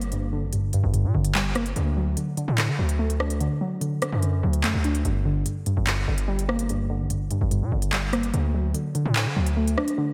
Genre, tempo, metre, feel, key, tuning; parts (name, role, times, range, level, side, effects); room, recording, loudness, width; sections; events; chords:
hip hop, drill; 146 BPM; 4/4; half-time; G harmonic minor; A4 = 439 Hz
warbly dusty pluck; accompaniment; 0.0-10.1 s; G2 to D4; -28 LUFS; equal; chorus, phaser
distorted 808-style bass; bass; 0.0-9.8 s; G1 to D3; -28 LUFS; equal; distortion
drill drum kit; drums; 0.0-10.0 s; handclaps, hi-hat, rim click; -32 LUFS; equal
moderate lush hall reverb, RT60 1.7 s, digital ambience; dreamy mix soaked in reverb; -24 LUFS; mono
0.0-10.1 A section
0.0 Gm; 1.8 D; 5.0 Gm; 8.3 D